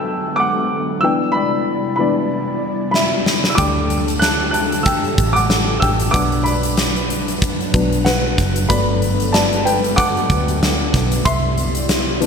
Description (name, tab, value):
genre	piano-driven pop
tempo	94 BPM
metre	4/4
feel	swing 56% on 16ths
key	unclear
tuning	A4 = 440 Hz
part	warm baby grand piano	accompaniment	0.0-12.3 s	E3 to G6	-18 LUFS	left 1 dB	none
part	airy breathy pad	sustained chords	0.0-12.3 s	C3 to A5	-24 LUFS	equal	chorus
part	huge arena drum kit	drums	2.9-12.3 s	hi-hat, kick drum, snare drum	-18 LUFS	equal	gated reverb
part	vintage muted fingered electric bass	bass	3.6-12.3 s	F#1 to D2	-22 LUFS	right 1 dB	none
room	moderate lush hall reverb, RT60 1.9 s, studio ambience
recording	bright 1980s-style digital production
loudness	-15 LUFS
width	side -6 dB against mid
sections	0.0-12.3 A section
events	grand piano solo 0.0-12.3; drum fill 2.9-3.6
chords	0.0 Gmaj7; 1.0 Cmaj7; 3.6 Dsus4; 6.1 Bm; 8.7 Gmaj7; 11.3 Cmaj7